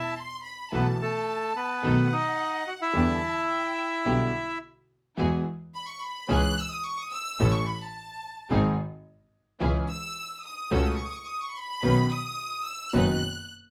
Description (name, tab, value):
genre	tango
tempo	108 BPM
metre	4/4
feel	rubato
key	E minor, E major from 5.2 s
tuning	A4 = 442 Hz
part	bandoneon	melody	0.0-4.6 s	A3 to F#5	-30 LUFS	equal	none
part	clear studio violin section	second line	0.0-13.5 s	F#5 to F#6	-36 LUFS	equal	none
part	clear concert grand piano	accompaniment	0.7-13.2 s	F#1 to A4	-30 LUFS	equal	none
part	rich studio string section	stabs	0.7-13.2 s	B3 to B4	-36 LUFS	equal	none
part	clear double bass	bass	0.7-13.2 s	F#1 to E2	-29 LUFS	equal	none
room	moderate studio ambience, RT60 0.5 s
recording	none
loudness	-28 LUFS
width	mono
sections	0.0-5.2 A section; 5.2-13.7 B section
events	violin section solo 5.2-13.7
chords	0.0 Amadd9; 0.7 B7sus4; 1.8 B7; 3.0 Em7; 5.2 Eadd9; 6.3 C#m; 7.4 A; 8.5 G#; 9.6 C#m; 10.7 F#m/C#; 11.8 Badd9